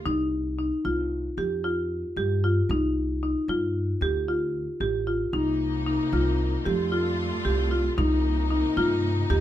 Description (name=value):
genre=contemporary instrumental, chamber music in an uneven meter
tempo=227 BPM (eighths)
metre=5/8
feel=straight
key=unclear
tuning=A4 = 440 Hz
part: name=rich studio string section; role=sustained chords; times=0.0, 5.3-9.4 s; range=C3 to F4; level=-32 LUFS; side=left 1 dB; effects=none
part: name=marimba with medium hard mallets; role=arpeggios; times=0.1-9.4 s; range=Eb4 to G4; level=-26 LUFS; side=equal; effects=none
part: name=upright bass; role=bass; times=0.1-9.4 s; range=A1 to G2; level=-28 LUFS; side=equal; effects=none
room=moderate studio reverb, RT60 0.6 s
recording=minimal, uncompressed stereo recording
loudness=-23 LUFS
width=side -12 dB against mid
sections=0.1-9.4 A section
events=none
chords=0.1 Cm; 1.4 Fsus2; 2.7 Cm; 4.0 Dm; 5.3 Cm7; 6.7 Fadd9; 8.0 Cm7